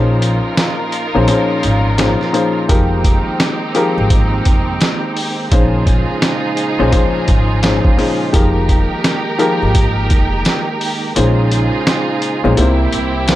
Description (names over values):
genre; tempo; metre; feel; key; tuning
hip hop, boom-bap hip-hop; 85 BPM; 4/4; swing 62% on 16ths; unclear; A4 = 440 Hz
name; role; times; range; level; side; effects
warm upright piano; accompaniment; 0.0-13.4 s; Bb2 to C5; -18 LUFS; left 2 dB; cassette tape, high-pass filter, low-pass filter, plate reverb
clear studio string section; stabs; 0.0-13.4 s; C4 to Bb4; -21 LUFS; right 2 dB; high-pass filter, low-pass filter, tape echo, plate reverb
upright bass; bass; 0.0-13.4 s; F1 to C2; -16 LUFS; equal; none
trip hop sampler-style drum kit; drums; 0.2-13.4 s; hi-hat, kick drum, snare drum; -15 LUFS; equal; none
percussive tonewheel organ; sustained chords; 2.7-13.4 s; C3 to G5; -24 LUFS; right 3 dB; chorus vibrato, slow rotary speaker, high-pass filter, low-pass filter, plate reverb
room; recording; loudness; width
light reverb; none; -12 LUFS; side -14 dB against mid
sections
0.0-13.4 A section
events
break 0.0-2.7; kick muted 11.2-13.4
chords
0.0 Bbm11; 2.7 Fm11; 5.5 Bbm11; 8.3 Fm11; 11.2 Bbm11; 12.6 C7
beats
0.57 1.28 1.99 | 2.69 3.40 4.11 4.81 | 5.52 6.22 6.93 7.63 | 8.34 9.05 9.75 10.46 | 11.16 11.87 12.57 13.28